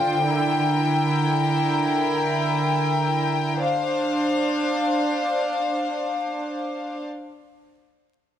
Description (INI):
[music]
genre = trip hop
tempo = free time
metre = none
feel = none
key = D minor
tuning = A4 = 443 Hz
[part]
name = rich studio string section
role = sustained chords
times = 0.0-7.0 s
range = D3 to G5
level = -21 LUFS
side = equal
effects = none
[sound]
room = moderate echo chamber reverb, RT60 2.1 s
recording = heavily compressed radio sound, multiband compression, vinyl crackle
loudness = -20 LUFS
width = side -10 dB against mid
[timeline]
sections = 0.0-3.6 A section; 3.6-7.0 B section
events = none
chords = 0.2 Edim/D; 3.6 Dm7